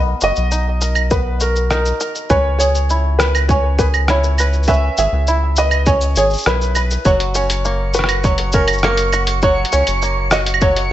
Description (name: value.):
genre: folktronica.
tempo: 101 BPM.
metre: 4/4.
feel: straight.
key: unclear.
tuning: A4 = 440 Hz.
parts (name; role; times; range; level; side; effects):
bluegrass banjo; arpeggios; 0.0-10.9 s; F#3 to B4; -22 LUFS; right 1 dB; low-pass filter, digital delay.
round analog bass; bass; 0.0-10.9 s; F#1 to C#2; -18 LUFS; equal; none.
felt-muted upright piano; melody; 0.2-10.9 s; A#4 to E5; -19 LUFS; equal; digital delay.
lo-fi sampler-style drum kit; drums; 0.2-10.9 s; claves, hi-hat, rim click, shaker; -20 LUFS; right 1 dB; studio reverb.
electronic kick drum; drums; 1.1-10.7 s; none; -17 LUFS; equal; studio reverb.
twinkling granular texture; texture; 7.5-10.9 s; C#6; -24 LUFS; right 4 dB; built-in reverb.
room: light reverb, digital ambience.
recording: nothing above 8.0 kHz.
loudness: -13 LUFS.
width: side -13 dB against mid.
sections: 0.0-10.9 A section.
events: filter sweep on five-string banjo 0.0-10.9.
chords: 0.0 Bmaj7; 2.3 C#m7; 7.1 F#.